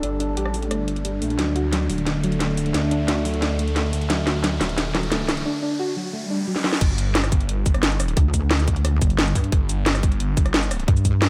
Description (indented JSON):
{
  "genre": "dark technical drum and bass",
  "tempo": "177 BPM",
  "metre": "4/4",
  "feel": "straight",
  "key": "unclear",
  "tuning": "A4 = 440 Hz",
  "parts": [
    { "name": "sweeping resonant pad", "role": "sustained chords", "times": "0.0-5.4 s", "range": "D3 to A4", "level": "-29 LUFS", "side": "equal", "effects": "chorus, phaser, sidechain pumping" },
    { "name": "soft round pluck", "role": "arpeggios", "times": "0.0-6.7 s", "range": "F#3 to G4", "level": "-30 LUFS", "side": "equal", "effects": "lush chorus, sidechain pumping, delay" },
    { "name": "phased detuned saw bass", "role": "bass", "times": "0.0-10.9 s", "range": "Eb1 to D2", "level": "-27 LUFS", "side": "equal", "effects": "phaser, overdrive, sidechain pumping" },
    { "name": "drum and bass drum kit", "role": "drums", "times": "0.0-11.3 s", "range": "cabasa, crash cymbal, hi-hat, rim click, snare drum", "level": "-26 LUFS", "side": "equal", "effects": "none" },
    { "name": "riser and swell", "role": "sound effects", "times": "0.0-6.8 s", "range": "none", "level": "-37 LUFS", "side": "equal", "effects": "none" },
    { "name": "electronic kick drum", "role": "drums", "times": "6.8-11.1 s", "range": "none", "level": "-22 LUFS", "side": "equal", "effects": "none" },
    { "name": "pulsing pluck wobble bass", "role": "bass", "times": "8.2-11.3 s", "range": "G1 to G2", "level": "-22 LUFS", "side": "equal", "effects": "chorus" }
  ],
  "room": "light reverb",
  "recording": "none",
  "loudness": "-22 LUFS",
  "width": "mono",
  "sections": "0.0-6.8 A section; 6.8-11.3 B section",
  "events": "build-up 0.0-6.8; riser 0.0-6.8; drum fill 1.4-5.5, 6.6; swell 6.1-6.8; drop 6.8-11.3",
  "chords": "0.0 G5; 1.4 D; 6.8 G5"
}